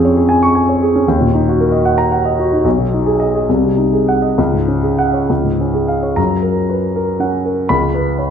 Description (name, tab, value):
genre	classical, romantic character piece for solo piano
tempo	64-83 BPM (dotted quarters)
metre	6/8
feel	rubato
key	F# major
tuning	A4 = 440 Hz
part	warm concert grand piano	solo	0.0-8.3 s	B1 to C#6	-12 LUFS	equal	none
room	wet recital hall reverb, RT60 1.5 s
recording	minimal, uncompressed stereo recording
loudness	-12 LUFS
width	side -8 dB against mid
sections	0.0-6.2 A section; 6.2-8.3 B section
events	none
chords	0.0 C#/E#; 1.1 D#m; 2.7 G#m/B; 3.5 G#7/B#; 4.4 C#sus4; 5.3 C#; 6.2 F#; 7.7 Bsus2/C#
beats	0.28 | 1.06 1.85 | 2.65 3.49 | 4.38 5.29 | 6.18 6.96 | 7.71